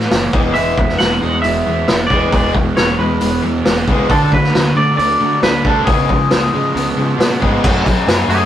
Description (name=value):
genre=indie rock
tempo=135 BPM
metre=4/4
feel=straight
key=E mixolydian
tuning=A4 = 439 Hz
part: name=crunchy overdriven guitar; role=riff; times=0.0-8.5 s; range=E2 to F#4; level=-19 LUFS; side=right 2 dB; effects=none
part: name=overdriven semi-hollow guitar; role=riff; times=0.0-8.5 s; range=F#2 to D4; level=-20 LUFS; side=left 3 dB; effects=none
part: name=fuzz fingered electric bass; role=bass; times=0.0-8.5 s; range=E1 to F#3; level=-22 LUFS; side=equal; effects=overdrive
part: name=vintage drum kit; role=drums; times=0.0-8.4 s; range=crash cymbal, hi-hat, kick drum, snare drum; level=-16 LUFS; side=equal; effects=none
part: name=twangy electric guitar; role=melody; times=0.5-8.5 s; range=G#4 to F#5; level=-18 LUFS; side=equal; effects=none
room=moderate studio reverb, RT60 0.5 s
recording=rough rehearsal-room recording, warm saturation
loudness=-12 LUFS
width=side -11 dB against mid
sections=0.0-7.6 A section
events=none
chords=0.3 E; 4.1 D; 5.9 C#7; 7.6 F#m